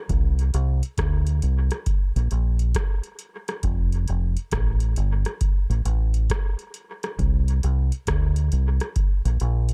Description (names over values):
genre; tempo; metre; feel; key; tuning
roots reggae; 68 BPM; 4/4; swing 64% on 16ths; F major; A4 = 440 Hz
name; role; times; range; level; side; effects
deep dub fingered electric bass; bass; 0.1-9.7 s; F1 to D2; -23 LUFS; equal; none
booming analog drum machine; drums; 0.1-9.7 s; hi-hat, kick drum, rim click; -27 LUFS; equal; overdrive
room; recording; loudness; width
little or no reverb; none; -23 LUFS; mono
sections
0.0-9.7 A section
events
none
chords
none